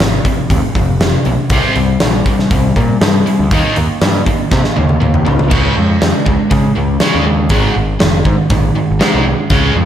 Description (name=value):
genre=quiet-loud alternative rock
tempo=120 BPM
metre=4/4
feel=straight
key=unclear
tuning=A4 = 440 Hz
part: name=overdriven electric guitar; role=riff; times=0.0-9.9 s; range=F2 to Eb4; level=-15 LUFS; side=equal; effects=slapback echo
part: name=growling picked electric bass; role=bass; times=0.0-9.9 s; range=F1 to Db3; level=-16 LUFS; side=equal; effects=overdrive
part: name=big rock drum kit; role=drums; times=0.0-9.6 s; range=crash cymbal, hi-hat, kick drum, snare drum, toms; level=-14 LUFS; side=equal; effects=none
room=moderate recital hall reverb, RT60 1.6 s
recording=none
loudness=-10 LUFS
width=side -10 dB against mid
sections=0.0-5.5 A section; 5.5-9.9 B section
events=drum fill 4.5-5.5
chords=0.0 Fm; 1.5 C5; 3.5 Eb5; 5.5 Db; 7.5 Ab5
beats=0.00 0.50 1.00 | 1.50 2.01 2.51 3.01 | 3.51 4.01 4.52 5.02 | 5.52 6.02 6.52 7.01 | 7.51 8.01 8.51 9.01 | 9.51